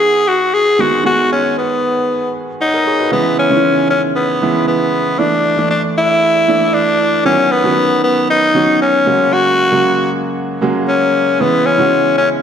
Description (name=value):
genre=pop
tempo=116 BPM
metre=4/4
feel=straight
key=C# dorian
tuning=A4 = 441 Hz
part: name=raspy tenor saxophone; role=melody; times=0.0-12.3 s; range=B3 to G#4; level=-13 LUFS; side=left 2 dB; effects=tape echo
part: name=clear concert grand piano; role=accompaniment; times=0.0-12.4 s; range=C#3 to F#5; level=-16 LUFS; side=right 3 dB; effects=none
room=wet recital hall reverb, RT60 1.3 s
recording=none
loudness=-11 LUFS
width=side -8 dB against mid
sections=0.0-3.1 A section; 3.1-12.4 B section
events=none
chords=0.0 G#m7; 3.1 C#m7; 5.2 Dsus2; 7.3 Badd9; 9.1 F#add9; 11.4 C#m7